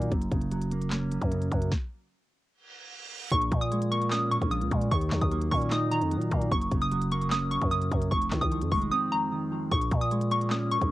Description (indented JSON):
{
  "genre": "hip hop, trap",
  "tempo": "150 BPM",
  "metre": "4/4",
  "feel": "half-time",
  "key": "Bb minor",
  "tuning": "A4 = 439 Hz",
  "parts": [
    { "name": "mellow electric guitar", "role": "accompaniment", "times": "0.0-10.9 s", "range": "F2 to Eb4", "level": "-30 LUFS", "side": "right 1 dB", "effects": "none" },
    { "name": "growling 808-style bass", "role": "bass", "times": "0.0-10.9 s", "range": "F1 to Bb2", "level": "-30 LUFS", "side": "equal", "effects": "none" },
    { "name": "trap drum kit", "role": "drums", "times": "0.0-10.9 s", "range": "handclaps, hi-hat, kick drum, snare drum", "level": "-31 LUFS", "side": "equal", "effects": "cassette tape" },
    { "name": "reverse cymbal", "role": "sound effects", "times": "2.6-3.3 s", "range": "none", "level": "-39 LUFS", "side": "right 5 dB", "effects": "none" },
    { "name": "hollow square pluck", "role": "melody", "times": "3.3-10.9 s", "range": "Bb5 to Eb6", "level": "-29 LUFS", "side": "equal", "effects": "chorus, cassette tape, plate reverb, analog delay" }
  ],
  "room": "light reverb",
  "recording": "home recording on cassette",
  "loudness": "-25 LUFS",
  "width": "side -16 dB against mid",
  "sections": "0.0-3.3 A section; 3.3-10.9 B section",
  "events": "stop 1.7-3.3; reverse cymbal 2.6-3.3; drums muted 8.9-9.7",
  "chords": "0.1 Gb; 1.7 N.C.; 3.3 Bbm7; 4.9 Ebm7; 6.5 Gb; 8.1 Fm7; 9.7 Bbm7"
}